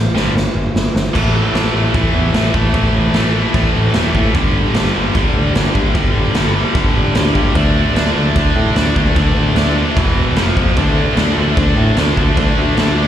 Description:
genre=punk rock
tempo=150 BPM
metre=4/4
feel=straight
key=unclear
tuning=A4 = 440 Hz
part: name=modern bright picked electric bass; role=bass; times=0.0-13.0 s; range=E1 to A2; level=-17 LUFS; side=equal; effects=none
part: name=tight distorted guitar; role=riff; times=0.1-13.1 s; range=E2 to D4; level=-17 LUFS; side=equal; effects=distortion, slapback echo
part: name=raw garage drum kit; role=drums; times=0.2-12.9 s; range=crash cymbal, kick drum, snare drum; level=-16 LUFS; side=equal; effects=none
room=little or no reverb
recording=live gig heard through the venue's PA, club reverb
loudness=-12 LUFS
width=side -10 dB against mid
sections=0.0-1.1 A section; 1.1-13.1 B section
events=drum fill 0.0-1.1; half time 0.0-1.1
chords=0.2 G5; 1.1 A5; 4.4 G5; 7.6 D5; 10.0 E5; 10.4 F5; 10.8 D5

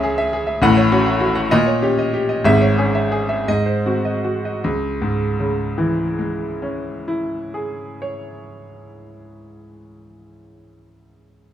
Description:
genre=classical, virtuoso piano study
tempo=50-71 BPM (dotted quarters)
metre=6/8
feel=rubato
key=C# minor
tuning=A4 = 442 Hz
part: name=clear grand piano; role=solo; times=0.0-11.5 s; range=G#1 to F#5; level=-17 LUFS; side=equal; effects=none
room=moderate large studio reverb, RT60 1.1 s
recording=heard from further back in the room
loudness=-17 LUFS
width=side -10 dB against mid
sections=0.0-4.6 A section; 4.6-9.3 B section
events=slowing down 0.0-4.6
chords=0.0 C#m; 0.6 F#m/A; 1.5 D#7/A#; 2.5 C#m/G#; 3.5 G#7; 4.6 C#m

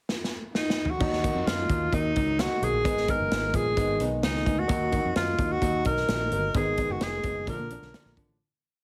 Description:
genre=uptempo 1960s-style soul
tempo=130 BPM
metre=4/4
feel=straight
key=Eb minor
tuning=A4 = 439 Hz
part: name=natural country drum kit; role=drums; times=0.1-8.3 s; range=crash cymbal, hi-hat, kick drum, snare drum, toms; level=-33 LUFS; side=equal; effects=none
part: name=breathy tenor saxophone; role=melody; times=0.6-8.1 s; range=Eb4 to Bb4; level=-30 LUFS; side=equal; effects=none
part: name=clear baby grand piano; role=accompaniment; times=1.0-8.4 s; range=D3 to Gb4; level=-34 LUFS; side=equal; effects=none
part: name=fingered electric bass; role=bass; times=1.0-8.4 s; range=F1 to Bb2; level=-34 LUFS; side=equal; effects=none
room=moderate club reverb, RT60 0.5 s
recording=heavily compressed radio sound, multiband compression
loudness=-27 LUFS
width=mono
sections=0.0-1.0 pickup bar; 1.0-8.4 verse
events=drum fill 0.1-1.0; fade-out 6.5-8.4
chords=0.0 N.C.; 1.0 Ebm; 2.8 Abm; 4.7 Ebm; 6.5 Abm; 7.5 Bb

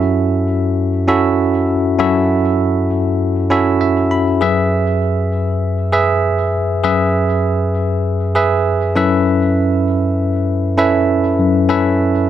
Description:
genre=pop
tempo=99 BPM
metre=4/4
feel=swing 55% on 16ths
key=F# minor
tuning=A4 = 440 Hz
part: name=bell-like tine electric piano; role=solo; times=0.0-12.3 s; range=F#2 to B5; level=-13 LUFS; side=moving between left 4 dB and right 4 dB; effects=auto-pan, tape echo
room=light reverb, digital ambience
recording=none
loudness=-13 LUFS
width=side -11 dB against mid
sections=0.0-12.3 A section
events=tine electric piano fill 3.5-4.4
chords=0.0 F#m7; 4.4 E/F#; 9.0 Aadd9/F#

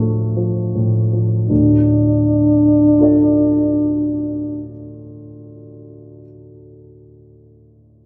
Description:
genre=classical, romantic duo for French horn and grand piano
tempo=40 BPM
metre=3/4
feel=rubato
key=D minor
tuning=A4 = 444 Hz
part: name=dark grand piano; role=accompaniment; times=0.0-8.1 s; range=D2 to D5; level=-21 LUFS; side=equal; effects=none
part: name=dark French horn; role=melody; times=1.5-4.7 s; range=D4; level=-16 LUFS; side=equal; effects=none
room=wet recital hall reverb, RT60 1.3 s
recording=none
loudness=-15 LUFS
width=mono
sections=0.0-1.5 A section; 1.5-6.0 B section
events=slowing down 0.0-1.5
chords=0.0 Dm

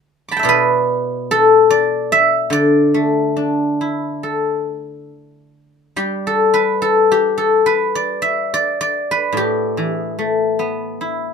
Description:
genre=chinese traditional, Chinese solo plucked strings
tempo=67-76 BPM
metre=4/4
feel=rubato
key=D zhi mode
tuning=A4 = 440 Hz
part: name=guzheng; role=solo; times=0.3-11.3 s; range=A2 to D6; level=-14 LUFS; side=left 1 dB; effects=none
room=light reverb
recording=minimal, uncompressed stereo recording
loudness=-14 LUFS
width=side -6 dB against mid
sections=0.0-6.0 A section; 6.0-11.3 B section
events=none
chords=none

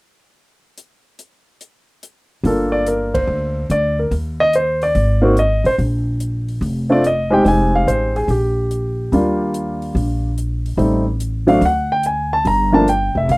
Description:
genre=jazz piano trio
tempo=144 BPM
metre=4/4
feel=swing 68% on 8ths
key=G minor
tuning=A4 = 440 Hz
part: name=compact cocktail drum kit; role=drums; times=0.8-13.4 s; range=hi-hat, kick drum, ride cymbal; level=-33 LUFS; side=equal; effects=none
part: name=upright bass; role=bass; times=2.4-13.4 s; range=F1 to Eb2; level=-20 LUFS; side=equal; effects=none
part: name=warm grand piano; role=melody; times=2.5-13.4 s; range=F3 to Bb5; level=-16 LUFS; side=equal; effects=none
room=light reverb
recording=rough home demo mix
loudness=-15 LUFS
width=side -24 dB against mid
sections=0.8-2.4 A section; 2.4-13.4 B section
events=band accent 3.1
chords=0.8 N.C.; 2.4 Gm7; 4.1 Cm/Eb; 4.9 Ab; 5.8 Bb5; 7.4 Fm7; 8.3 Gm/Bb; 9.1 Ebmaj9; 10.8 Am7b5; 11.6 D; 12.5 Gm7

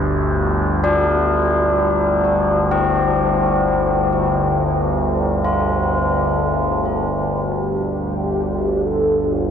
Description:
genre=ambient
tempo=free time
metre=none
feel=none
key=unclear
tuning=A4 = 439 Hz
part: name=overtone-sweeping drone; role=drone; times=0.0-9.5 s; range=G1 to D2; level=-18 LUFS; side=equal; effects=chorus, built-in reverb
part: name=quartz singing bowl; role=texture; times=0.0-7.5 s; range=G4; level=-32 LUFS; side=right 3 dB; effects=none
part: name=tubular bells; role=arpeggios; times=0.8-9.5 s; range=C4 to F4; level=-20 LUFS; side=left 2 dB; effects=ping-pong delay
part: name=mellow horn-like synth lead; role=melody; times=7.4-9.5 s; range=F4 to A4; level=-20 LUFS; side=equal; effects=ensemble chorus
room=wet huge ambient reverb, RT60 8.8 s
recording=worn, warbling old tape, cassette tape, warbly pitch drift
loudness=-16 LUFS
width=side -8 dB against mid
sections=0.0-7.5 A section; 7.5-9.5 B section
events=none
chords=0.0 G5

